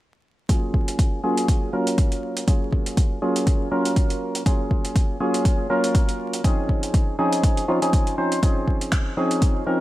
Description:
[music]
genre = deep house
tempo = 121 BPM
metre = 4/4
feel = swing 56% on 16ths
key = Gb lydian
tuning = A4 = 445 Hz
[part]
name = percussive organ stab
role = stabs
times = 0.5-9.8 s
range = F3 to C5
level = -23 LUFS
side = equal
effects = lush chorus, sidechain pumping, tape echo
[part]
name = dusty soul sampler-style drum kit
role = drums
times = 0.5-9.5 s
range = finger snaps, hi-hat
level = -30 LUFS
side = right 2 dB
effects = overdrive
[part]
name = electronic kick drum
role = drums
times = 0.5-9.5 s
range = none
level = -20 LUFS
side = equal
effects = overdrive
[sound]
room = light reverb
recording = vinyl crackle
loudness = -19 LUFS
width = side -16 dB against mid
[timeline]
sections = 0.5-9.8 A section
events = filter sweep on synth stab 0.5-9.8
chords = 0.5 Gbmaj9; 6.4 Dbmaj9

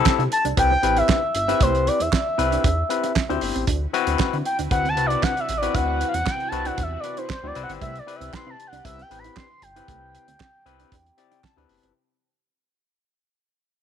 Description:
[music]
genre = early-eighties boogie funk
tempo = 116 BPM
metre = 4/4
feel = straight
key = A dorian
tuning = A4 = 438 Hz
[part]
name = overdriven tine electric piano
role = accompaniment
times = 0.0-11.9 s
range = C4 to A5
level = -26 LUFS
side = left 13 dB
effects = auto-pan
[part]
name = chorused synth bass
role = bass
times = 0.0-11.9 s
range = F#1 to D3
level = -27 LUFS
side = equal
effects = none
[part]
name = damped 70s drum kit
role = drums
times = 0.1-11.9 s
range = handclaps, hi-hat, kick drum, snare drum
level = -24 LUFS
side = right 3 dB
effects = none
[part]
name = mellow electric guitar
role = riff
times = 0.2-11.9 s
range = A3 to E4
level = -34 LUFS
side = right 14 dB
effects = ensemble chorus
[part]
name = expressive synth lead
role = melody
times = 0.3-11.4 s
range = C5 to C6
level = -24 LUFS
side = equal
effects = chorus
[part]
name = string machine, full ensemble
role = sustained chords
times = 3.7-11.9 s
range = C3 to B4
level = -39 LUFS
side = right 2 dB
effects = phaser, ensemble chorus
[sound]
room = light reverb, studio reverb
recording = 1960s-style stereo with parts hard left and right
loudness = -20 LUFS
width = side -9 dB against mid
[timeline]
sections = 0.0-12.0 A section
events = fade-out 0.0-12.0; tine electric piano fill 10.9-12.0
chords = 0.0 Am9; 3.7 D13; 7.6 Am9

